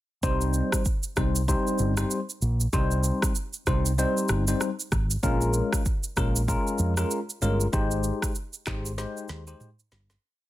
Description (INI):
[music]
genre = afrobeats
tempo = 96 BPM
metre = 4/4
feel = swing 58% on 16ths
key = unclear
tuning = A4 = 440 Hz
[part]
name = bell-like tine electric piano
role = accompaniment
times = 0.2-9.7 s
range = G3 to C5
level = -28 LUFS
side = left 2 dB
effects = phaser, plate reverb
[part]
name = fingered electric bass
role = bass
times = 0.2-10.2 s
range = G1 to F2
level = -26 LUFS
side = equal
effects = none
[part]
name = afro-pop drum kit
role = drums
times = 0.2-10.2 s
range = handclaps, kick drum, rim click, shaker, snare drum, toms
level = -28 LUFS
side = right 1 dB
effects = soft clipping on snare
[sound]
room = light reverb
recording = dense, heavily limited modern master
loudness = -24 LUFS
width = side -15 dB against mid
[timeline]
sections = 0.2-10.2 verse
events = fade-out 7.7-10.2; drum fill 9.0-10.2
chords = 0.2 Cm; 5.2 Bbm7; 7.7 Abmaj7